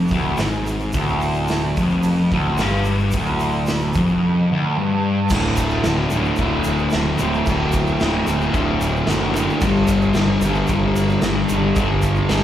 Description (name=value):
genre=garage rock duo or trio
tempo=111 BPM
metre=4/4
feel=straight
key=unclear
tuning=A4 = 442 Hz
part: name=fuzz guitar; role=riff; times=0.0-12.4 s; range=D2 to G3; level=-18 LUFS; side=left 1 dB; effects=distortion
part: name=growling picked electric bass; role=bass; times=0.0-12.4 s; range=D1 to Ab1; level=-24 LUFS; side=equal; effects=overdrive
part: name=raw garage drum kit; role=drums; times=0.1-12.4 s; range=crash cymbal, hi-hat, kick drum, snare drum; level=-24 LUFS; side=right 1 dB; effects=none
part: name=tube shaker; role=percussion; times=0.1-12.4 s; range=none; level=-39 LUFS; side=right 4 dB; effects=none
room=moderate club reverb, RT60 0.8 s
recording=live gig heard through the venue's PA, club reverb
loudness=-16 LUFS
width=side -11 dB against mid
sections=0.0-5.3 A section; 5.3-12.4 B section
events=none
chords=0.0 Ddim; 5.3 D5; 9.6 G5